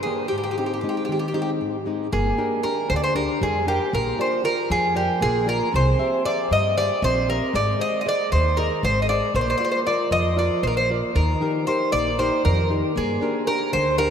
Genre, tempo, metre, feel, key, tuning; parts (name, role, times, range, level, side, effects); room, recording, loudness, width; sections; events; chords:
greek folk, Greek bouzouki band; 232 BPM (eighths); 7/8; straight; G phrygian; A4 = 441 Hz
Greek bouzouki; melody; 0.0-14.1 s; G4 to Eb5; -22 LUFS; right 1 dB
nylon-string guitar; accompaniment; 0.0-14.1 s; G2 to E5; -26 LUFS; left 2 dB
upright bass; bass; 2.1-14.1 s; G1 to G2; -24 LUFS; equal
wet cathedral reverb, RT60 6.2 s; in a vast, echoing space; -20 LUFS; side -7 dB against mid
0.0-2.1 A section; 2.1-14.1 A section
0.3 Ab; 2.1 Gm; 3.9 Bb; 5.7 C; 7.5 Ab; 9.3 Bb; 11.2 Eb; 13.0 Gm